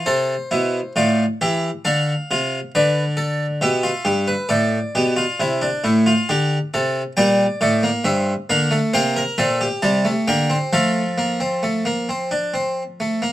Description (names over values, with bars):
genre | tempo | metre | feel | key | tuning
classical, baroque-style 4-part fugue for harpsichord | 67 BPM | 4/4 | straight | F major | A4 = 445 Hz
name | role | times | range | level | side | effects
harpsichord | solo | 0.0-13.3 s | G2 to A5 | -17 LUFS | equal | none
room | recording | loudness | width
little or no reverb | close, detailed microphones | -17 LUFS | side -14 dB against mid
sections
0.0-13.3 A section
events
none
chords
0.0 Am7; 1.8 Dm; 3.6 G; 5.4 C; 7.2 Gm; 8.9 C7; 10.7 F